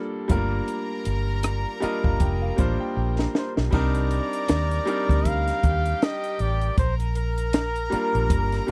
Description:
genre	lush 1970s-style soul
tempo	79 BPM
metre	4/4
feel	swing 58% on 16ths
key	G minor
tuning	A4 = 438 Hz
part	bright baby grand piano	accompaniment	0.0-8.7 s	G3 to Bb5	-30 LUFS	equal	none
part	bright chamber string section	second line	0.3-8.7 s	G4 to Bb5	-37 LUFS	equal	none
part	vintage muted fingered electric bass	bass	0.3-8.7 s	F1 to Eb2	-28 LUFS	equal	none
part	compact cocktail drum kit	drums	0.3-8.7 s	crash cymbal, hi-hat, kick drum, rim click, snare drum	-26 LUFS	equal	none
part	warm flugelhorn	melody	3.4-8.7 s	Bb4 to F5	-31 LUFS	equal	none
room	little or no reverb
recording	dry, close 1970s-style studio recording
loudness	-24 LUFS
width	mono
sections	0.0-3.7 A section; 3.7-8.7 B section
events	grand piano fill 1.4-3.7; drum fill 3.0-3.7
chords	0.0 Gm7; 3.7 Cm9; 6.8 Gm7/Bb

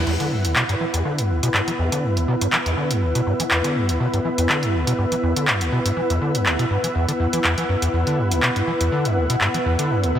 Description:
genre	acid house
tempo	122 BPM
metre	4/4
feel	swing 54% on 16ths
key	unclear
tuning	A4 = 443 Hz
part	overdriven acid bass	riff	0.0-10.2 s	D2 to E3	-22 LUFS	equal	distortion, tube saturation, analog chorus, cassette tape, tape echo
part	ethereal airy pad	texture	0.0-10.2 s	E4 to E6	-25 LUFS	equal	ensemble chorus, built-in reverb
part	lush unison pad	sustained chords	0.1-10.2 s	B3 to B4	-27 LUFS	equal	chorus
part	punchy analog drum machine	drums	0.1-10.1 s	crash cymbal, handclaps, hi-hat	-23 LUFS	equal	small room ambience
room	moderate lush hall reverb, RT60 2.2 s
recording	none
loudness	-18 LUFS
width	side -10 dB against mid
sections	0.1-10.2 A section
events	filter sweep on acid bass 0.1-10.2; filter sweep on analog synth pad 0.1-10.2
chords	0.1 E5

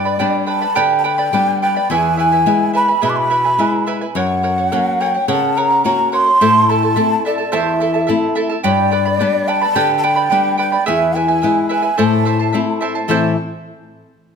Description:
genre	andean folk, Andean ensemble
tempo	107 BPM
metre	4/4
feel	straight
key	A dorian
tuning	A4 = 440 Hz
part	breathy mellow large quena	melody	0.0-13.4 s	D5 to D6	-16 LUFS	equal	slapback echo
part	charango	accompaniment	0.0-13.3 s	E4 to B5	-19 LUFS	right 6 dB	none
part	flamenco guitar	accompaniment	0.0-13.4 s	E2 to E5	-19 LUFS	left 5 dB	none
room	moderate recital hall reverb, RT60 1.7 s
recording	close, detailed microphones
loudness	-13 LUFS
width	side -6 dB against mid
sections	0.0-13.1 A section; 13.1-14.4 B section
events	none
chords	0.0 G; 1.9 E; 4.2 F#; 6.4 Am; 8.6 G; 10.9 E; 12.0 Am

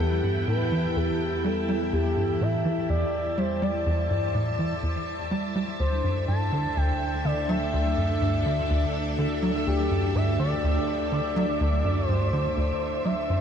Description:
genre	ambient, sequencer-driven space music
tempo	124 BPM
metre	4/4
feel	straight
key	unclear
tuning	A4 = 443 Hz
part	expressive synth lead	melody	0.0-13.4 s	G4 to A5	-29 LUFS	left 1 dB	chorus, ping-pong delay
part	string machine, full ensemble	sustained chords	0.0-13.4 s	D4 to A5	-30 LUFS	equal	ensemble chorus
part	tight sequencer bass	riff	0.0-13.4 s	D2 to G3	-26 LUFS	equal	ensemble chorus, ping-pong delay
part	analog drone	bass	0.0-13.4 s	D2 to E2	-33 LUFS	equal	chorus
room	moderate shimmer reverb, RT60 7.4 s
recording	dark, warm production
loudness	-23 LUFS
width	side -8 dB against mid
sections	0.0-13.4 A section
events	none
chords	0.0 Emadd9; 5.8 Dsus4

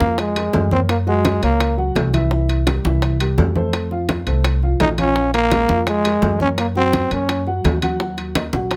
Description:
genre	latin, salsa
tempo	169 BPM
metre	4/4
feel	straight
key	Bb minor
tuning	A4 = 440 Hz
part	growling trombone	melody	0.0-1.8, 4.8-7.5 s	Ab3 to Eb4	-20 LUFS	equal	none
part	dark upright piano	accompaniment	0.0-8.8 s	E3 to Gb5	-27 LUFS	equal	none
part	upright bass	bass	0.0-8.8 s	Bb1 to Gb2	-23 LUFS	equal	none
part	bongos	percussion	0.0-8.8 s	none	-29 LUFS	equal	none
part	congas	percussion	0.0-8.8 s	none	-26 LUFS	equal	none
part	timbales	percussion	0.2-8.8 s	none	-28 LUFS	equal	none
room	light reverb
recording	close, detailed microphones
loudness	-18 LUFS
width	mono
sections	0.0-8.8 A section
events	none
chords	0.0 Bbm7; 0.9 Gb; 2.3 C7; 3.7 F; 5.2 Bb7(no3); 6.6 Gb; 8.0 Ebm

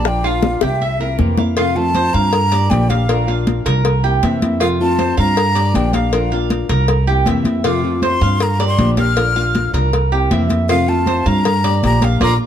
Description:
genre	latin, Cuban son and guajira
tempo	158 BPM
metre	4/4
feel	straight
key	F major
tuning	A4 = 442 Hz
part	breathy jazz flute	melody	0.0-12.3 s	E5 to F6	-20 LUFS	left 1 dB	none
part	nylon-string guitar	accompaniment	0.0-12.3 s	C3 to G4	-22 LUFS	left 4 dB	none
part	Cuban tres	arpeggios	0.0-12.3 s	F4 to F5	-21 LUFS	right 4 dB	none
part	upright bass	bass	0.0-12.4 s	Bb1 to G2	-18 LUFS	right 1 dB	none
part	congas	percussion	0.0-12.3 s	none	-21 LUFS	equal	none
part	bongos and cowbell	percussion	0.1-12.3 s	none	-23 LUFS	left 5 dB	none
room	light reverb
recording	dark, warm production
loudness	-13 LUFS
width	side -9 dB against mid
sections	0.0-1.6 A section; 1.6-12.5 B section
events	drum fill 0.4-1.6; band accent 12.2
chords	0.1 Bb; 0.8 C7; 1.6 F; 2.3 Gm7; 3.1 Bb; 3.8 C7; 4.6 F; 5.4 Gm7; 6.1 Bb; 6.9 C7; 7.6 F; 8.4 Gm7; 9.2 Bb; 9.9 C7; 10.7 F; 11.4 Gm7

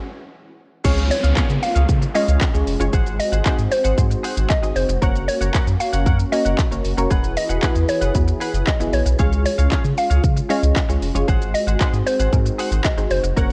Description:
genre	dance-pop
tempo	115 BPM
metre	4/4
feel	straight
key	Db major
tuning	A4 = 440 Hz
part	punchy chord stab	accompaniment	0.8-13.5 s	Ab3 to Eb5	-29 LUFS	equal	chorus, phaser, sidechain pumping
part	warm analog pad	sustained chords	0.8-13.5 s	E3 to B4	-32 LUFS	equal	chorus, sidechain pumping
part	direct-recorded clean electric guitar	riff	0.8-13.5 s	Ab4 to Gb5	-32 LUFS	equal	analog chorus
part	round analog bass	bass	0.8-13.5 s	E1 to Db3	-22 LUFS	equal	sidechain pumping
part	pop drum kit	drums	0.8-13.5 s	crash cymbal, handclaps, hi-hat, kick drum, shaker	-23 LUFS	equal	none
part	downlifter	sound effects	0.8-5.0 s	none	-34 LUFS	equal	none
part	mallet-like synth pluck	melody	1.1-13.2 s	C5 to F5	-26 LUFS	equal	chorus, sidechain pumping
room	digital ambience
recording	worn, warbling old tape, cassette tape, warbly pitch drift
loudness	-19 LUFS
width	mono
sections	0.8-13.5 A section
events	riser 0.8; stop 0.0-0.8; drop 0.8-13.5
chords	0.0 N.C.; 0.8 Db; 2.9 Ab7; 5.0 Gb; 7.1 Eadd9; 9.2 Db; 11.3 Ab7

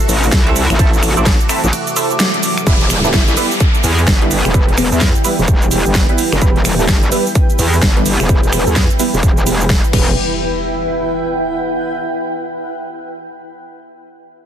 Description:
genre	bass house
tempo	128 BPM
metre	4/4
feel	swing 61% on 16ths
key	E minor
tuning	A4 = 443 Hz
part	sweeping resonant pad	sustained chords	0.0-10.2 s	C3 to G4	-25 LUFS	equal	chorus, sidechain pumping
part	big-room dance drum kit	drums	0.0-10.0 s	crash cymbal, finger snaps, hi-hat, ride cymbal, shaker, snare drum	-18 LUFS	right 1 dB	none
part	granular cloud pad	texture	0.0-12.0 s	E4 to D6	-22 LUFS	equal	built-in reverb, sidechain pumping
part	metallic wobble bass	bass	0.1-10.2 s	E1 to E2	-15 LUFS	equal	distortion, chorus, sidechain pumping
part	electronic kick drum	drums	0.3-10.0 s	none	-13 LUFS	equal	none
part	band-passed chord stab	stabs	0.5-10.1 s	G3 to E5	-22 LUFS	right 3 dB	phaser, lush chorus, sidechain pumping, ping-pong delay
part	downlifter and impact	sound effects	2.7-6.4, 9.9-11.8 s	none	-24 LUFS	equal	none
part	bell-like FM electric piano	melody	3.1-5.0 s	B3 to E4	-23 LUFS	left 4 dB	chorus, phaser, ping-pong delay
room	light reverb, digital ambience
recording	dense, heavily limited modern master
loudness	-11 LUFS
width	side -9 dB against mid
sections	0.0-2.7 A section; 2.7-10.2 B section; 10.2-12.0 C section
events	drop 0.0-2.7; break 1.7-2.7; band accent 2.2; filter sweep on synth stab 2.7-10.2; filter sweep on analog synth pad 2.7-10.2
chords	0.0 Am; 2.7 Em

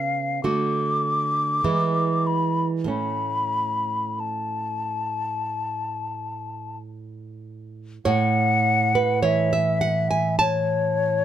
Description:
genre	romantic duo for flute and classical guitar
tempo	46-53 BPM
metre	4/4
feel	rubato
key	A major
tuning	A4 = 438 Hz
part	mellow hollow silver concert flute	melody	0.0-11.2 s	C#5 to D6	-24 LUFS	left 3 dB	none
part	nylon-string guitar	accompaniment	0.0-11.2 s	A2 to A5	-24 LUFS	right 4 dB	none
room	light reverb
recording	none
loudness	-21 LUFS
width	side -10 dB against mid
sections	0.0-8.0 A section; 8.0-11.2 B section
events	none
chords	0.4 D; 1.6 E7; 2.9 A

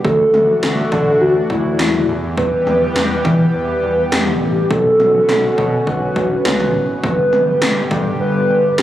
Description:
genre	synth-pop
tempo	103 BPM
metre	4/4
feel	straight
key	E dorian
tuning	A4 = 441 Hz
part	hollow clarinet-like synth lead	melody	0.0-8.8 s	E4 to B4	-16 LUFS	equal	chorus, phaser
part	chorused pulse-width pad	sustained chords	0.0-8.8 s	D3 to G4	-21 LUFS	equal	none
part	smooth synth bass	bass	0.0-8.8 s	F#1 to E3	-21 LUFS	equal	none
part	80s electronic pad drums	drums	0.0-8.8 s	kick drum, snare drum, toms	-21 LUFS	equal	gated reverb on snare and toms, overdrive
room	light reverb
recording	recorded on a phone in the room, club reverb, compression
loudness	-13 LUFS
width	side -12 dB against mid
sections	0.0-8.8 A section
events	none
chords	0.0 Dadd9; 2.1 Em; 4.7 Bmadd9; 7.0 G

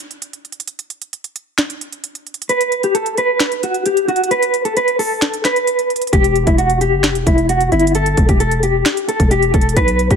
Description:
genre	hip hop, trap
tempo	132 BPM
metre	4/4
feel	half-time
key	E minor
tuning	A4 = 441 Hz
part	trap drum kit	drums	0.0-10.2 s	finger snaps, hi-hat, kick drum, snare drum	-18 LUFS	equal	none
part	mellow electric guitar	melody	2.5-10.2 s	E4 to B4	-15 LUFS	equal	tremolo, low-pass filter
part	growling 808-style bass	bass	6.1-10.2 s	E1 to B1	-18 LUFS	equal	none
room	light reverb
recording	none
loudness	-13 LUFS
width	side -6 dB against mid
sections	0.0-10.2 A section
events	break 0.0-6.1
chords	0.0 N.C.; 6.1 Em

